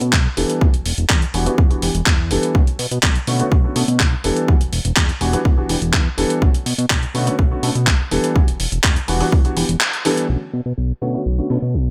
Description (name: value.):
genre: filtered disco house.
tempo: 124 BPM.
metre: 4/4.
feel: straight.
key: B minor.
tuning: A4 = 442 Hz.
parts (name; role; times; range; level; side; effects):
fat analog bass; bass; 0.0-11.9 s; E1 to B2; -23 LUFS; equal; sidechain pumping, low-pass filter.
dusty soul sampler-style drum kit; drums; 0.0-11.8 s; cabasa, handclaps, hi-hat; -23 LUFS; equal; overdrive, sidechain pumping on hats, low-pass filter on hats, low-pass filter on snare, sidechain pumping on perc, low-pass filter on perc.
electronic kick drum; drums; 0.1-9.4 s; none; -18 LUFS; equal; none.
warm baby grand piano; accompaniment; 0.4-11.6 s; D3 to A4; -23 LUFS; equal; phaser, sidechain pumping, low-pass filter.
room: light reverb.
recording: bright 1980s-style digital production.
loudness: -18 LUFS.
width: mono.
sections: 0.0-10.3 A section; 10.3-11.9 B section.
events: filter sweep 0.0-10.3, 10.3-11.9; band accent 9.8.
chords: 0.4 Em9; 2.5 Bm9; 4.2 Em9; 6.4 Bm9; 8.1 Em9; 10.3 Bm9.